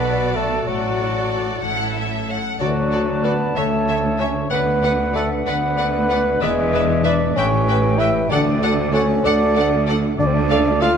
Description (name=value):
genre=cinematic, playful, whimsical film cue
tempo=63 BPM (dotted quarters)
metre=6/8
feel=straight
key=D major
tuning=A4 = 440 Hz
part: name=rich studio violin section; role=melody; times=0.0-10.9 s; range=D5 to G5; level=-27 LUFS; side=left 3 dB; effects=none
part: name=mellow oboe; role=second line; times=0.0-11.0 s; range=F#4 to F5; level=-27 LUFS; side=right 1 dB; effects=none
part: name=rich studio violin section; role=second line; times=0.0-10.9 s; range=A4 to E5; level=-32 LUFS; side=left 1 dB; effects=none
part: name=silver concert flute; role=second line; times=0.0-10.9 s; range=E5 to B5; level=-30 LUFS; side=left 2 dB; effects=none
part: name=dark bassoon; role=accompaniment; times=0.0-11.0 s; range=E3 to F4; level=-22 LUFS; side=right 2 dB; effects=none
part: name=rich studio viola section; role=accompaniment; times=0.0-10.9 s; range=E4 to C#5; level=-30 LUFS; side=right 1 dB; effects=none
part: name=mellow French horn section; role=sustained chords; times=0.0-10.9 s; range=F4 to E5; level=-28 LUFS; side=left 3 dB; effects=none
part: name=concert harp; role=arpeggios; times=0.0-11.0 s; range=A2 to B5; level=-27 LUFS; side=left 11 dB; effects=none
part: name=clear studio cello section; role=bass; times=0.0-11.0 s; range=D2 to B2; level=-24 LUFS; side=right 2 dB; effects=none
part: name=clear studio double bass section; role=bass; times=0.0-11.0 s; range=E1 to D2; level=-25 LUFS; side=right 3 dB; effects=none
part: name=warm clarinet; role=second line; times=2.6-10.9 s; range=A4 to D5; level=-30 LUFS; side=equal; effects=none
room=moderate scoring stage reverb, RT60 1.7 s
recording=faint mains hum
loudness=-16 LUFS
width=side -7 dB against mid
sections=0.0-2.6 A section; 2.6-11.0 B section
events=none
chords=0.0 Bm7; 0.7 D/A; 1.6 A; 2.6 D; 3.6 A/D; 4.5 Bm/D; 6.4 E7; 7.4 A9; 8.3 D; 10.2 Dm